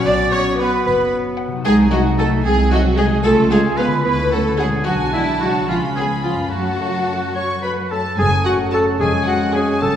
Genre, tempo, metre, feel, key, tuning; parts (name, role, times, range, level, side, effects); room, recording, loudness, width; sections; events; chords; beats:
cinematic, playful, whimsical film cue; 74 BPM (dotted quarters); 6/8; straight; F# minor; A4 = 440 Hz
large flute ensemble; second line; 0.0-9.9 s; E5 to D6; -27 LUFS; right 1 dB
mellow clarinet; second line; 0.0-9.9 s; A3 to C#5; -24 LUFS; equal
rich studio violin section; second line; 0.0-9.8 s; E4 to C#6; -23 LUFS; left 2 dB
mellow French horn section; sustained chords; 0.0-10.0 s; F#3 to F#4; -26 LUFS; left 2 dB
concert harp; arpeggios; 0.0-10.0 s; E#2 to B4; -26 LUFS; left 4 dB
warm studio cello section; bass; 0.0-10.0 s; E#2 to D4; -22 LUFS; right 1 dB
warm oboe; second line; 0.1-10.0 s; E4 to D5; -26 LUFS; right 2 dB
rich studio viola section; accompaniment; 0.1-9.7 s; C#4 to D5; -25 LUFS; right 1 dB
warm studio double bass section; bass; 0.1-10.0 s; E#1 to F#2; -24 LUFS; right 2 dB
warm studio violin section; melody; 0.6-10.0 s; Eb5 to C#6; -28 LUFS; left 3 dB
small celesta; melody; 7.4-10.0 s; F#5 to C#6; -28 LUFS; left 3 dB
wet scoring stage reverb, RT60 1.7 s; heard from further back in the room; -15 LUFS; side -9 dB against mid
0.0-8.2 A section; 8.2-10.0 B section
0.1 Bm; 1.7 Cdim7; 3.3 C#; 4.1 Dmaj7; 4.9 G#m7b5/B; 5.7 C#7; 6.5 F#m; 9.0 C#/E#
| 0.06 0.86 | 1.65 2.45 | 3.25 4.05 | 4.86 5.69 | 6.52 7.36 | 8.19 9.01 | 9.82